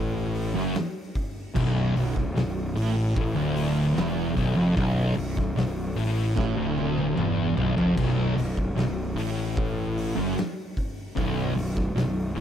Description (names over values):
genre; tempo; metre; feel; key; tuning
stoner and doom metal; 75 BPM; 4/4; straight; B minor; A4 = 442 Hz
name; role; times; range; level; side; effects
thick fuzz guitar; riff; 0.0-12.4 s; B1 to A2; -25 LUFS; equal; distortion
fuzz fingered electric bass; bass; 0.0-12.4 s; B0 to A1; -30 LUFS; equal; overdrive
oversized low-tuned drum kit; drums; 0.3-12.4 s; crash cymbal, hi-hat, kick drum, snare drum, toms; -31 LUFS; equal; none
room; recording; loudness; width
little or no reverb; none; -23 LUFS; side -9 dB against mid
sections
0.0-12.4 A section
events
drum fill 6.4-8.0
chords
0.0 Bm